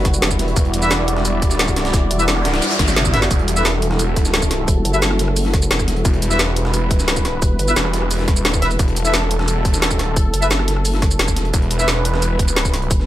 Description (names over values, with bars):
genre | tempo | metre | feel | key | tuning
dark technical drum and bass | 175 BPM | 4/4 | straight | E minor | A4 = 439 Hz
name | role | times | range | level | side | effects
dark analog pad | sustained chords | 0.0-13.1 s | G3 to D5 | -23 LUFS | equal | chorus, sidechain pumping
vowel-sweep wobble bass | bass | 0.0-13.1 s | E1 to G1 | -20 LUFS | equal | chorus
drum and bass drum kit | drums | 0.1-13.0 s | hi-hat, rim click, shaker, snare drum, toms | -20 LUFS | equal | overdrive, small room ambience
electronic kick drum | drums | 0.1-13.0 s | none | -18 LUFS | equal | overdrive, small room ambience
jungle sampler-style drum kit | drums | 0.1-13.1 s | hi-hat, snare drum | -26 LUFS | equal | overdrive, high-pass filter on hats, small room ambience, high-pass filter on snare, high-pass filter on room
snarling distorted saw bass | bass | 0.6-12.9 s | E1 | -20 LUFS | equal | distortion, overdrive
warm brass ensemble | stabs | 0.8-11.9 s | E4 to E5 | -23 LUFS | left 1 dB | ping-pong delay
noise sweep | sound effects | 2.2-3.3 s | none | -24 LUFS | right 2 dB | none
room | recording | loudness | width
digital ambience | none | -15 LUFS | side -13 dB against mid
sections
0.0-13.1 A section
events
noise sweep 2.2-3.3; drum fill 2.8-3.3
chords
0.0 Emadd9